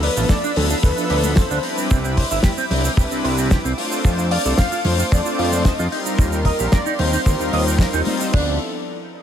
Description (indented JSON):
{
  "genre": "nu-disco, nu disco",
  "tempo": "112 BPM",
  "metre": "4/4",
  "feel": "straight",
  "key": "D dorian",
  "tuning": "A4 = 440 Hz",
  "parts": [
    { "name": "wide unison lead", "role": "melody", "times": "0.0-8.6 s", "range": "A4 to F5", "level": "-26 LUFS", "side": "equal", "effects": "ping-pong delay" },
    { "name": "clear studio violin section", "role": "sustained chords", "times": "0.0-8.6 s", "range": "D4 to E6", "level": "-30 LUFS", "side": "equal", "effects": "sidechain pumping" },
    { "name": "electric guitar with an envelope filter", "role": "riff", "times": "0.0-8.6 s", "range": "C4 to F5", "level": "-26 LUFS", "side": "right 4 dB", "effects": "wide subtle chorus, dub echo" },
    { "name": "fat analog bass", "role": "bass", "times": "0.0-8.6 s", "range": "G1 to F2", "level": "-21 LUFS", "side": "equal", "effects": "none" },
    { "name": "damped 70s drum kit", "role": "drums", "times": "0.0-8.4 s", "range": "crash cymbal, hi-hat, shaker, snare drum", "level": "-25 LUFS", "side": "left 2 dB", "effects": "none" },
    { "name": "warm analog pad", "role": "accompaniment", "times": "0.2-8.5 s", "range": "F3 to E5", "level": "-25 LUFS", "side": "left 1 dB", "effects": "chorus, dub echo" },
    { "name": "kick drum", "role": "drums", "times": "0.3-8.4 s", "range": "none", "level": "-16 LUFS", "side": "equal", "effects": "none" },
    { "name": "congas", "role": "percussion", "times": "0.3-8.2 s", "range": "none", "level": "-29 LUFS", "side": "left 1 dB", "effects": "none" }
  ],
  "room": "small room reverb",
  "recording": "none",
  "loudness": "-16 LUFS",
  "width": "side -9 dB against mid",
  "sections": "0.0-8.3 A section",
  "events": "drop 0.0-8.3",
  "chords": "0.0 Dm69; 1.6 Cmaj9; 3.8 F6; 5.9 Eb69; 8.3 Dm69"
}